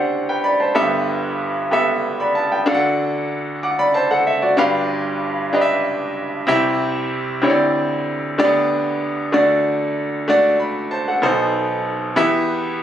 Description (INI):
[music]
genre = gospel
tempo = 63 BPM (dotted quarters)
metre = 6/8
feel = straight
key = G major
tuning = A4 = 440 Hz
[part]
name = bright grand piano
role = solo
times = 0.0-12.8 s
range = G1 to D6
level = -16 LUFS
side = equal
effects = none
[sound]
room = moderate large studio reverb, RT60 0.9 s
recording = recorded on a phone in the room, club reverb, compression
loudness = -16 LUFS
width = side -10 dB against mid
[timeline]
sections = 0.0-2.7 A section; 2.7-12.8 B section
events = none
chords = 0.0 D9sus4; 0.8 G69; 2.7 D; 4.6 G7; 6.5 C; 7.4 D9sus4; 8.4 G/D; 9.3 D; 11.2 B7b9; 12.2 Em